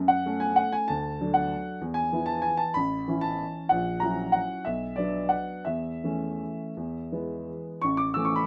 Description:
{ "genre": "classical, piano waltz", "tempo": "159-209 BPM", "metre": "3/4", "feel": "rubato", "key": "A major", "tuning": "A4 = 440 Hz", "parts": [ { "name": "warm upright piano", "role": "solo", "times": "0.0-8.5 s", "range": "A1 to E6", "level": "-28 LUFS", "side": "equal", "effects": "none" } ], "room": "light reverb", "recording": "none", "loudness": "-28 LUFS", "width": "mono", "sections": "0.0-7.8 A section", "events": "none", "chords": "0.0 F#m; 0.9 D; 1.8 E; 2.8 A; 3.7 F#7/A#; 4.7 Bm; 5.7 A/E; 6.8 E; 7.8 A" }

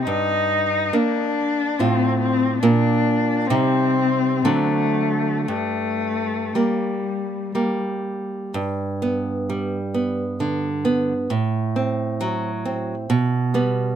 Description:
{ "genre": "romantic duo for cello and classical guitar", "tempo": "55-72 BPM", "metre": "3/4", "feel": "rubato", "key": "G minor, G major from 8.6 s", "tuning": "A4 = 440 Hz", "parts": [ { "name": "rich cello", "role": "melody", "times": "0.0-7.6 s", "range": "G3 to Eb4", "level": "-21 LUFS", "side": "left 5 dB", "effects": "tape echo" }, { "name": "nylon-string guitar", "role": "accompaniment", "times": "0.0-14.0 s", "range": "G2 to F4", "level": "-21 LUFS", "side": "right 3 dB", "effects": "none" } ], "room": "little or no reverb", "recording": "close, detailed microphones", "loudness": "-19 LUFS", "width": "side -9 dB against mid", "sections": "0.0-8.6 A section; 8.6-14.0 B section", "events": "none", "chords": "0.1 Gm; 1.8 F/A; 2.6 Bb; 3.5 Cm; 4.4 D7; 5.5 Gm; 8.6 G; 11.3 Am6; 13.1 G/B" }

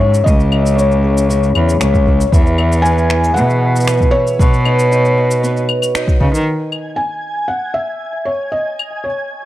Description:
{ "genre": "folktronica", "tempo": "116 BPM", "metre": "4/4", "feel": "straight", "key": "unclear", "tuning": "A4 = 440 Hz", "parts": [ { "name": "felt-muted upright piano", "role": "melody", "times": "0.0-9.5 s", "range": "C#5 to G#5", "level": "-20 LUFS", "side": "left 1 dB", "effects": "tape echo" }, { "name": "fingerpicked twelve-string acoustic guitar", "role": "arpeggios", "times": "0.0-7.0 s", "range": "C#3 to E5", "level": "-18 LUFS", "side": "left 1 dB", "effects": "tape echo" }, { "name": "rich cello", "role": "bass", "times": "0.0-6.4 s", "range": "C#2 to D#3", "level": "-14 LUFS", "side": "equal", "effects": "none" }, { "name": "electronic cabasa, claves and finger snaps", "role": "drums", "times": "0.1-8.9 s", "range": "none", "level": "-23 LUFS", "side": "left 3 dB", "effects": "none" }, { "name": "electronic kick drum", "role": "drums", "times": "0.3-6.3 s", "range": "none", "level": "-13 LUFS", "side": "equal", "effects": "none" }, { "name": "flickering grainy texture", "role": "texture", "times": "6.8-9.5 s", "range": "G#5 to G#6", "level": "-28 LUFS", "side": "right 2 dB", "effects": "built-in reverb" } ], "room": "studio ambience", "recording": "dry, close 1970s-style studio recording", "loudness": "-12 LUFS", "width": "side -14 dB against mid", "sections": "0.0-6.5 A section; 6.5-9.5 B section", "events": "band accent 6.0", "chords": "0.0 C#madd9; 2.3 Eadd9; 4.4 Badd9; 6.5 N.C." }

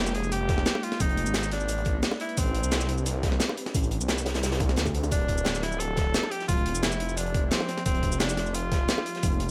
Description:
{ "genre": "liquid drum and bass", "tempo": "175 BPM", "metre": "4/4", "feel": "straight", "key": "D minor", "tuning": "A4 = 439 Hz", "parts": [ { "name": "bright tenor saxophone", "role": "melody", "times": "0.0-9.5 s", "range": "C4 to A4", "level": "-35 LUFS", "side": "equal", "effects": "digital delay" }, { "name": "glassy FM pad", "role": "sustained chords", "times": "0.0-9.5 s", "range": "F3 to E5", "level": "-40 LUFS", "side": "equal", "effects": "none" }, { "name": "swelling detuned saw bass", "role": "bass", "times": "0.0-9.5 s", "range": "D1 to D2", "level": "-32 LUFS", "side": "equal", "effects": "none" }, { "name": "breakbeat sampler-style drum kit", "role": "drums", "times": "0.1-9.5 s", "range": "hi-hat, shaker, snare drum", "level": "-32 LUFS", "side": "equal", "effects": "studio reverb" }, { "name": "crunchy breakbeat drum kit", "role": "drums", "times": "0.1-9.5 s", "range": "hi-hat, snare drum", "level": "-38 LUFS", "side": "equal", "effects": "high-pass filter on hats, studio reverb, high-pass filter on snare, high-pass filter on room" }, { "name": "electronic kick drum", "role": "drums", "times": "0.5-9.3 s", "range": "none", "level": "-30 LUFS", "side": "equal", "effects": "studio reverb" }, { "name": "bongos", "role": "percussion", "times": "0.8-9.0 s", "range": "none", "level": "-36 LUFS", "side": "equal", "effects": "none" } ], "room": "little or no reverb", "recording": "none", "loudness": "-27 LUFS", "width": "mono", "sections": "0.0-5.1 A section; 5.1-9.5 A section", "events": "drop 0.0-5.1, 5.1-9.5", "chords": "0.0 Fm11; 1.7 Am11; 5.1 Dm11" }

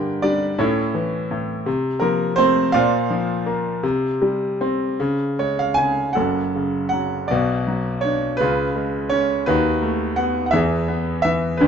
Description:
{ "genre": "classical, lyrical solo piano", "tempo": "51-57 BPM (dotted quarters)", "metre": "6/8", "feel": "rubato", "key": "F# minor from 6.2 s", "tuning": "A4 = 444 Hz", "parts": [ { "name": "bright grand piano", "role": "solo", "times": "0.0-11.7 s", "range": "F#1 to Ab5", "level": "-18 LUFS", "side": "equal", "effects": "none" } ], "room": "light reverb", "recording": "dark, warm production, nothing above 7.9 kHz", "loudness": "-18 LUFS", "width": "side -7 dB against mid", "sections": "0.0-6.2 A section; 6.2-11.7 B section", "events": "grand piano fill 5.0-6.2", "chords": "0.0 Gm; 0.6 A; 1.7 F; 2.7 Bbadd9; 3.8 C5; 5.0 Db; 6.2 F#m; 7.3 Bm; 8.4 C#; 9.5 B7/D#; 10.5 E" }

